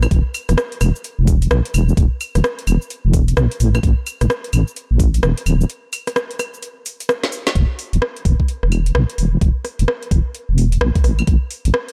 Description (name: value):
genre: UK garage, two-step garage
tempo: 129 BPM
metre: 4/4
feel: swing 63% on 16ths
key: unclear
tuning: A4 = 440 Hz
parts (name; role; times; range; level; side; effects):
- deep soft wobble bass; bass; 0.0-11.7 s; D1 to B1; -17 LUFS; equal; chorus
- garage drum kit; drums; 0.0-11.9 s; cabasa, claves, hi-hat, rim click, snare drum; -24 LUFS; equal; overdrive
- electronic kick drum; drums; 0.1-11.4 s; none; -18 LUFS; equal; overdrive
room: little or no reverb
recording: dark, warm production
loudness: -18 LUFS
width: mono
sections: 0.0-7.6 A section; 7.6-11.9 B section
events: drop 0.0-7.6; break 5.7-7.6; drum fill 7.2-7.6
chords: none